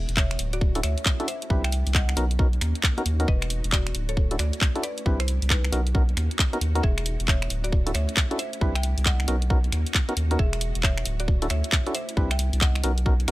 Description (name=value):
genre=UK garage, two-step garage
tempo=135 BPM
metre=4/4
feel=swing 64% on 16ths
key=unclear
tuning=A4 = 440 Hz
part: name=mallet-like synth pluck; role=melody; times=0.0-12.8 s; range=D#4 to G5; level=-35 LUFS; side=equal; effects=chorus, analog delay
part: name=soft string machine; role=sustained chords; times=0.0-13.3 s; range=G#3 to G4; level=-39 LUFS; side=equal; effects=ensemble chorus, sidechain pumping
part: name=saturated sub bass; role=bass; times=0.0-13.3 s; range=D1 to D#2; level=-25 LUFS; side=equal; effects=none
part: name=garage drum kit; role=drums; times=0.1-13.3 s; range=finger snaps, handclaps, hi-hat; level=-26 LUFS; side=equal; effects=none
part: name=electronic kick drum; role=drums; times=0.2-13.2 s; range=none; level=-23 LUFS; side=equal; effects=none
part: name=percussive organ stab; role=stabs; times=0.8-13.3 s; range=B3 to B4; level=-30 LUFS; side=equal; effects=chorus
room=little or no reverb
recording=dry, gritty hardware recording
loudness=-22 LUFS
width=side -18 dB against mid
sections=0.0-13.3 A section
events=none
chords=0.4 Dmaj9; 1.5 Cmaj9; 2.2 Bmaj9; 3.3 Emaj9; 3.9 Dmaj9; 5.1 Cmaj9; 5.7 Bmaj9; 6.8 Emaj9; 7.5 Dmaj9; 8.6 Cmaj9; 9.3 Bmaj9; 10.4 Emaj9; 11.1 Dmaj9; 12.2 Cmaj9